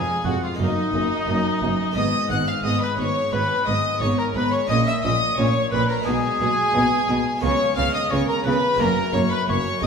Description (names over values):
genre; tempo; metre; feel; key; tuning
classical, baroque-style concerto movement with solo episodes; 88 BPM; 4/4; straight; unclear; A4 = 439 Hz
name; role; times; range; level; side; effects
warm chamber violin section; melody; 0.0-9.9 s; Eb5 to Gb6; -26 LUFS; left 1 dB; none
warm oboe; melody; 0.0-9.9 s; Eb4 to Gb5; -26 LUFS; left 2 dB; none
rich chamber violin section; second line; 0.0-9.9 s; Eb4 to Gb5; -27 LUFS; left 1 dB; none
harpsichord; accompaniment; 0.0-9.9 s; F2 to Gb4; -29 LUFS; equal; none
dark chamber viola section; accompaniment; 0.3-9.9 s; Ab3 to Db4; -28 LUFS; left 1 dB; none
rich chamber double bass section; bass; 0.3-9.9 s; F1 to Db2; -28 LUFS; right 2 dB; none
warm chamber cello section; bass; 0.3-9.9 s; F2 to Db3; -27 LUFS; right 2 dB; none
room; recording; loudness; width
wet recital hall reverb, RT60 1.3 s; heard from further back in the room; -19 LUFS; side -6 dB against mid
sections
0.0-9.9 A section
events
none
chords
0.0 Bb7/F; 0.6 Ebm/Gb; 2.0 Abm; 4.7 Eb5/Bb; 6.1 Abm/Cb; 7.4 Db7; 8.8 Gb